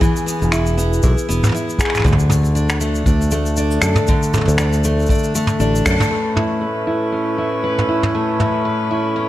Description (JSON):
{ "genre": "folktronica", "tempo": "118 BPM", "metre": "4/4", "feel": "swing 56% on 16ths", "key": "A major", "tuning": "A4 = 441 Hz", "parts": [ { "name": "picked steel-string acoustic guitar", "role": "arpeggios", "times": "0.0-9.3 s", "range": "D3 to B4", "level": "-19 LUFS", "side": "left 1 dB", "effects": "vintage 12-bit sampler grit, low-pass filter, ping-pong delay" }, { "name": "kick drum", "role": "drums", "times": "0.0-6.0 s", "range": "none", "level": "-18 LUFS", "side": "equal", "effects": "none" }, { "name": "vintage brush drum kit", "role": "drums", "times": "0.0-8.5 s", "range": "finger snaps, shaker, toms", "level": "-21 LUFS", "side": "equal", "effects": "none" }, { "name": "fingered electric bass", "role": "bass", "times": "0.4-6.0 s", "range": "E1 to F#2", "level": "-17 LUFS", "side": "equal", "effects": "none" }, { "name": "rich string quartet", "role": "sustained chords", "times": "6.1-9.3 s", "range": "A2 to B4", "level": "-21 LUFS", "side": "equal", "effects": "none" } ], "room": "light reverb", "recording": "none", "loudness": "-15 LUFS", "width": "side -14 dB against mid", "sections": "0.0-6.1 A section; 6.1-9.3 B section", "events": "band accent 5.9; filter sweep on steel-string acoustic guitar 6.1-9.3", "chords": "0.0 E; 2.0 D5; 6.1 Aadd9" }